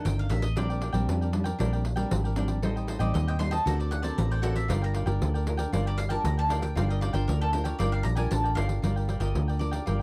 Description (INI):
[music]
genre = samba and choro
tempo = 116 BPM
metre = 4/4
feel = straight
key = G minor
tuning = A4 = 440 Hz
[part]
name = bowl-back mandolin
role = melody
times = 0.0-10.0 s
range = A4 to C6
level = -36 LUFS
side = equal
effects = none
[part]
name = nylon-string guitar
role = accompaniment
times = 0.0-10.0 s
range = A2 to Bb4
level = -36 LUFS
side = equal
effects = none
[part]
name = vintage muted fingered electric bass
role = bass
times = 0.1-10.0 s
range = G1 to F2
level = -30 LUFS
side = equal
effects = none
[part]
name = pandeiro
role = percussion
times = 0.1-10.0 s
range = none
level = -37 LUFS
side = equal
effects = none
[part]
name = cavaquinho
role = accompaniment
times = 0.6-10.0 s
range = D4 to G5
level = -39 LUFS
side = equal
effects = none
[sound]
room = little or no reverb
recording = dry, close 1970s-style studio recording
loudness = -28 LUFS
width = mono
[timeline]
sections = 0.0-8.8 A section; 8.8-10.0 B section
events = mandolin solo 0.0-8.8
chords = 0.0 F13; 0.6 Bb69; 2.6 Am7b5; 3.7 D7b13; 4.7 Gm7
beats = 0.05 | 0.57 1.08 1.60 2.12 | 2.63 3.15 3.67 4.18 | 4.70 5.22 5.73 6.25 | 6.76 7.28 7.80 8.32 | 8.83 9.35 9.87